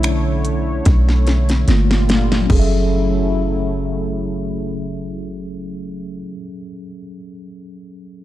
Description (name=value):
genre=contemporary R&B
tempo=73 BPM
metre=4/4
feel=swing 54% on 16ths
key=F# minor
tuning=A4 = 438 Hz
part: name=mellow tine electric piano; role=accompaniment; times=0.0-8.2 s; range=F#3 to F#5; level=-24 LUFS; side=equal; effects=medium stereo tremolo, low-pass filter
part: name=warm analog pad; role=sustained chords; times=0.0-6.2 s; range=Bb2 to C#5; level=-25 LUFS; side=equal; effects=chorus, low-pass filter
part: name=warm 808-style bass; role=bass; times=0.0-6.2 s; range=F#1 to B1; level=-18 LUFS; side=equal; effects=none
part: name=trap drum kit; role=drums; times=0.0-2.7 s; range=crash cymbal, finger snaps, hi-hat, kick drum, snare drum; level=-19 LUFS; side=equal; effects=none
room=digital ambience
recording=dark, warm production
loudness=-15 LUFS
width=side -14 dB against mid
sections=0.0-2.5 A section; 2.5-5.8 B section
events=filter sweep 0.0-2.5; drum fill 0.9-2.5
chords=0.0 Bm11; 1.7 Gm7; 2.5 F#m7